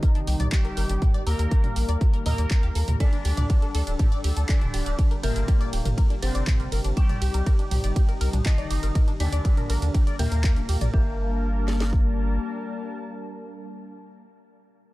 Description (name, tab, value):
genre	melodic techno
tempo	121 BPM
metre	4/4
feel	straight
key	G minor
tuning	A4 = 436 Hz
part	resonant sweep polysynth	melody	0.0-13.9 s	Bb2 to Bb4	-33 LUFS	left 1 dB	chorus, sidechain pumping, ping-pong delay
part	dark detuned synth bell	second line	0.0-13.9 s	Bb4 to Bb5	-40 LUFS	left 3 dB	chorus, sidechain pumping, tape echo
part	sweeping resonant pad	sustained chords	0.0-13.9 s	C3 to A5	-36 LUFS	equal	chorus, sidechain pumping
part	tight sequenced synth	arpeggios	0.0-11.2 s	D4 to Eb5	-37 LUFS	left 2 dB	chorus, sidechain pumping, tape echo
part	house drum kit	drums	0.0-12.0 s	kick drum, snare drum	-21 LUFS	equal	none
part	punchy analog drum machine	drums	0.0-10.9 s	handclaps, hi-hat, ride cymbal, toms	-33 LUFS	right 1 dB	sidechain pumping on hats, sidechain pumping on cymbals, sidechain pumping on toms
part	round analog bass	bass	0.3-12.4 s	D1 to Eb2	-24 LUFS	equal	sidechain pumping
room	digital ambience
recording	none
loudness	-21 LUFS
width	side -18 dB against mid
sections	0.0-10.9 A section; 10.9-14.9 B section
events	drop 0.0-10.9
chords	0.0 Cm; 1.0 Eb; 3.0 Dsus4; 5.0 Gm; 7.0 Cm; 9.0 Eb; 10.9 Gmadd9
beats	0.03 0.52 | 1.02 1.51 2.01 2.51 | 3.00 3.50 3.99 4.49 | 4.99 5.48 5.98 6.47 | 6.97 7.46 7.96 8.46 | 8.95 9.45 9.94 10.44 | 10.94 11.43 11.93 12.42 | 12.92 13.41 13.91